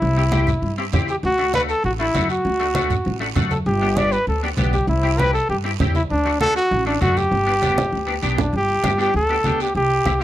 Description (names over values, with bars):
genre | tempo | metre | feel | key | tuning
latin, cumbia | 197 BPM | 4/4 | straight | G major | A4 = 440 Hz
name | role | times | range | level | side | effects
warm trumpet | melody | 0.0-10.2 s | D4 to D5 | -20 LUFS | equal | none
upright bass | bass | 0.0-10.2 s | G1 to G2 | -23 LUFS | equal | none
guiro | percussion | 0.0-10.2 s | none | -35 LUFS | right 17 dB | none
electric guitar at the edge of break-up | accompaniment | 0.2-10.2 s | A3 to G4 | -26 LUFS | left 2 dB | analog chorus
congas | percussion | 0.2-10.2 s | none | -24 LUFS | right 1 dB | none
room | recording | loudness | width
small room reverb | dry, close 1970s-style studio recording | -17 LUFS | side -13 dB against mid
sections
0.0-8.5 A section; 8.5-10.2 B section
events
drum fill 7.6-8.5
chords
0.0 C; 1.2 D; 3.7 G; 4.9 C; 6.1 D; 7.3 G